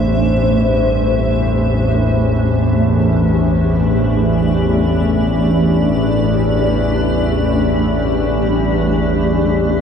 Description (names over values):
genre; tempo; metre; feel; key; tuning
dark ambient drone; free time; none; none; A minor; A4 = 442 Hz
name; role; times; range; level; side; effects
granular cloud pad; sustained chords; 0.0-9.8 s; A3 to E5; -17 LUFS; equal; built-in reverb
bronze singing bowl; arpeggios; 0.0-5.0 s; G2 to A3; -28 LUFS; equal; none
organ-like drone; drone; 0.0-9.8 s; A1 to E2; -15 LUFS; equal; ensemble chorus, built-in reverb
room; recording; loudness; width
wet huge ambient reverb, RT60 8.7 s; worn, warbling old tape, cassette tape, warbly pitch drift; -13 LUFS; side -7 dB against mid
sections
0.0-9.8 A section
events
filter sweep on synth drone 0.0-9.8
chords
0.0 Am